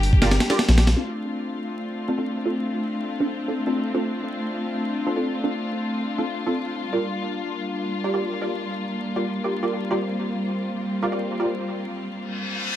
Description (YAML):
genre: drum and bass, jungle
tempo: 161 BPM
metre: 4/4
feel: straight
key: D minor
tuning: A4 = 440 Hz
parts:
  - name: muted studio string section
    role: sustained chords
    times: 0.0-12.8 s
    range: G3 to G4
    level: -26 LUFS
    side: left 1 dB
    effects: none
  - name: soft dub sub bass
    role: bass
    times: 0.0-0.9 s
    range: G1 to Bb1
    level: -18 LUFS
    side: equal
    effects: none
  - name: breakbeat sampler-style drum kit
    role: drums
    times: 0.0-1.0 s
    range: hi-hat, kick drum, snare drum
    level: -19 LUFS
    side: equal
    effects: small room ambience
  - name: filtered dub chord stab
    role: stabs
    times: 0.2-11.5 s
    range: C4 to D5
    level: -27 LUFS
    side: right 1 dB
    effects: ensemble chorus, dub echo
  - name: reverse cymbal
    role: sound effects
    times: 12.3-12.8 s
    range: none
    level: -27 LUFS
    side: left 4 dB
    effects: none
room: moderate plate reverb, RT60 1.1 s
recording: vinyl crackle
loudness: -23 LUFS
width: side -12 dB against mid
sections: 1.0-12.8 A section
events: filter sweep on synth stab 1.0-12.8; reverse cymbal 12.3-12.8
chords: 0.0 Gm; 1.0 Dm7; 6.9 Gm7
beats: 0.22 0.59 | 0.96 1.34 1.71 2.08 | 2.45 2.83 3.20 3.57 | 3.94 4.32 4.69 5.06 | 5.44 5.81 6.18 6.55 | 6.93 7.30 7.67 8.04 | 8.42 8.79 9.16 9.54 | 9.91 10.28 10.65 11.03 | 11.40 11.77 12.14 12.52